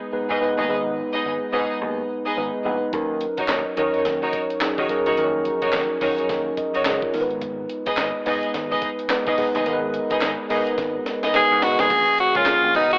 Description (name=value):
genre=R&B, new jack swing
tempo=107 BPM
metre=4/4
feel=swing 60% on 16ths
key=unclear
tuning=A4 = 440 Hz
part: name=mellow tine electric piano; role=accompaniment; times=0.0-13.0 s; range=Eb3 to Eb5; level=-23 LUFS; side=equal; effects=analog chorus
part: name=bright chamber string section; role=stabs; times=0.3-12.9 s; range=Eb4 to Eb5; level=-25 LUFS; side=equal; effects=tape echo
part: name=vintage slap bass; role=bass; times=0.3-13.0 s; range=F1 to Eb3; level=-31 LUFS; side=equal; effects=none
part: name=breakbeat sampler-style drum kit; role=drums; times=2.9-13.0 s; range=crash cymbal, handclaps, hi-hat, kick drum, snare drum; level=-28 LUFS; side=equal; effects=cassette tape
part: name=raspy tenor saxophone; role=melody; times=11.4-13.0 s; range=Eb4 to Ab4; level=-16 LUFS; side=equal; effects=cassette tape
room=wet spring reverb, RT60 2.7 s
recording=home recording on cassette, telephone sound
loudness=-19 LUFS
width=side -39 dB against mid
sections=0.0-11.9 A section; 11.9-13.0 B section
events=drum fill 10.8-11.9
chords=0.0 Abm; 2.9 Ebm7; 7.1 Abm; 11.9 Bbm7